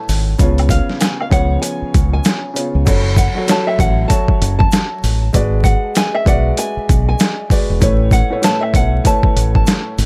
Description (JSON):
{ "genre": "hip hop, boom-bap hip-hop", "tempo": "97 BPM", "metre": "4/4", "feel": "swing 61% on 16ths", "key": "F# minor", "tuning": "A4 = 440 Hz", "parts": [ { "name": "nylon-string guitar", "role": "melody", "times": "0.0-10.1 s", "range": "E5 to A5", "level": "-24 LUFS", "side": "equal", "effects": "high-pass filter, low-pass filter" }, { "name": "dark concert grand piano", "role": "accompaniment", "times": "0.0-10.1 s", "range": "A2 to D5", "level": "-24 LUFS", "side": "equal", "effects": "cassette tape, high-pass filter, low-pass filter" }, { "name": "deep dub fingered electric bass", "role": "bass", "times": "0.1-10.1 s", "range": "E1 to C#2", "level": "-18 LUFS", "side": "equal", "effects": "none" }, { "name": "boom bap sampler-style drum kit", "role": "drums", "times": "0.1-10.1 s", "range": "crash cymbal, hi-hat, kick drum, snare drum", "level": "-17 LUFS", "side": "equal", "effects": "overdrive" }, { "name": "egg shaker and woodblock", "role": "percussion", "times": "0.1-10.1 s", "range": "none", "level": "-32 LUFS", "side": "equal", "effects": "none" } ], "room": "studio ambience", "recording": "vinyl crackle", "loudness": "-15 LUFS", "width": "mono", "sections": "0.0-2.9 A section; 2.9-10.1 A section", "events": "none", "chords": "0.4 C#7; 2.9 F#m; 5.3 G#m7b5; 7.8 Aadd9" }